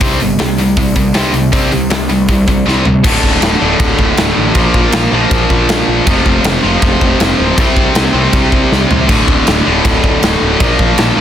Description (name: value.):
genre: punk rock.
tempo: 159 BPM.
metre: 4/4.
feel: straight.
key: D minor.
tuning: A4 = 441 Hz.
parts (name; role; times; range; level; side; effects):
tight distorted guitar; riff; 0.0-11.2 s; D2 to C4; -12 LUFS; left 1 dB; distortion.
fuzz picked electric bass; bass; 0.0-11.2 s; D1 to C2; -17 LUFS; equal; overdrive.
big rock drum kit; drums; 0.0-11.1 s; crash cymbal, hi-hat, kick drum, snare drum, splash cymbal, toms; -14 LUFS; equal; none.
room: little or no reverb.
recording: dense, heavily limited modern master.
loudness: -9 LUFS.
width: side -10 dB against mid.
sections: 0.0-3.1 A section; 3.1-11.2 B section.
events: drum fill 2.7-3.1, 8.7-9.1.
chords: 0.0 C5; 3.1 D5; 4.6 Bb5; 6.1 F5; 7.6 C5; 9.1 D5; 10.6 Bb5.